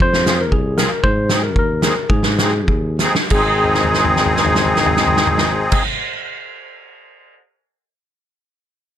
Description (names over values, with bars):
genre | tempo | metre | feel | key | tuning
alpine folk, alpine dance band | 92-116 BPM | 2/4 | rubato | Ab major | A4 = 440 Hz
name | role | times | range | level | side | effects
tine electric piano | melody | 0.0-5.8 s | Ab4 to C5 | -22 LUFS | left 2 dB | medium tremolo
mellow tuba | bass | 0.0-5.8 s | Ab1 to Ab2 | -21 LUFS | equal | none
loose indie drum kit | drums | 0.0-7.3 s | crash cymbal, hi-hat, kick drum, snare drum, toms | -18 LUFS | equal | none
musette accordion | accompaniment | 0.3-5.8 s | C4 to Ab4 | -17 LUFS | equal | none
room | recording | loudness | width
little or no reverb | none | -14 LUFS | side -10 dB against mid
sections
0.0-3.3 A section; 3.3-5.9 B section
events
slowing down 1.0-3.3; drum fill 3.0-3.3, 3.6-5.7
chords
0.0 Fm; 1.0 Ab